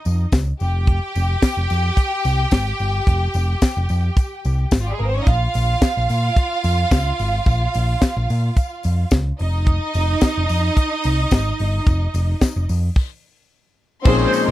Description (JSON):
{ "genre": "disco", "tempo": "109 BPM", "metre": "4/4", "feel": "straight", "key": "F minor", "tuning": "A4 = 440 Hz", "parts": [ { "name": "bright symphonic violin section", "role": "second line", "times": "0.0-14.5 s", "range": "G3 to G5", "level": "-23 LUFS", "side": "right 2 dB", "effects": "none" }, { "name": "hollow-body short-scale picked electric bass", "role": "bass", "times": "0.1-14.5 s", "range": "F1 to Bb2", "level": "-19 LUFS", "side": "equal", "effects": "none" }, { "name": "tambourine", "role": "percussion", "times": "0.1-14.5 s", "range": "none", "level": "-39 LUFS", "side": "left 18 dB", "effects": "none" }, { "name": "tight funk drum kit", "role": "drums", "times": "0.3-14.5 s", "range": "crash cymbal, hi-hat, kick drum, snare drum", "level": "-16 LUFS", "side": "equal", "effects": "none" }, { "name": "clean electric guitar", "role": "accompaniment", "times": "14.0-14.5 s", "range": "Db4 to C5", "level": "-24 LUFS", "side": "right 5 dB", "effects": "wah, spring reverb" }, { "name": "warm grand piano", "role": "accompaniment", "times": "14.0-14.5 s", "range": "Bb2 to Ab4", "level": "-18 LUFS", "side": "left 6 dB", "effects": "none" }, { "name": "bright studio string section", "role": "sustained chords", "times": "14.0-14.5 s", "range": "Ab3 to C6", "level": "-22 LUFS", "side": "left 4 dB", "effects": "none" } ], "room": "little or no reverb", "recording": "dry, close 1970s-style studio recording", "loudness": "-16 LUFS", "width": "side -15 dB against mid", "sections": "0.0-14.1 A section", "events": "stop 13.0-14.1", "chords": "0.0 Bbm (rootless); 0.6 Fm; 5.3 Bb5; 9.4 F7(no3)" }